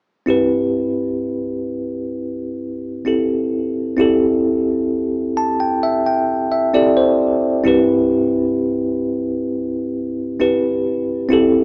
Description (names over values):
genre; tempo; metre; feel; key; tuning
pop; 66 BPM; 4/4; straight; C major; A4 = 440 Hz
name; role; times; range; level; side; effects
bell-like tine electric piano; accompaniment; 0.3-11.6 s; A1 to A5; -18 LUFS; equal; none
room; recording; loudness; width
moderate plate reverb, RT60 2.8 s; rough home demo mix, small speaker sound; -18 LUFS; mono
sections
0.3-11.6 A section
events
tine electric piano fill 4.9-7.7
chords
0.3 Cmaj7; 4.0 Am7; 7.7 Cmaj7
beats
| 0.28 1.20 2.13 3.06 | 3.99 4.91 5.83 6.74 | 7.66 8.57 9.49 10.40 | 11.31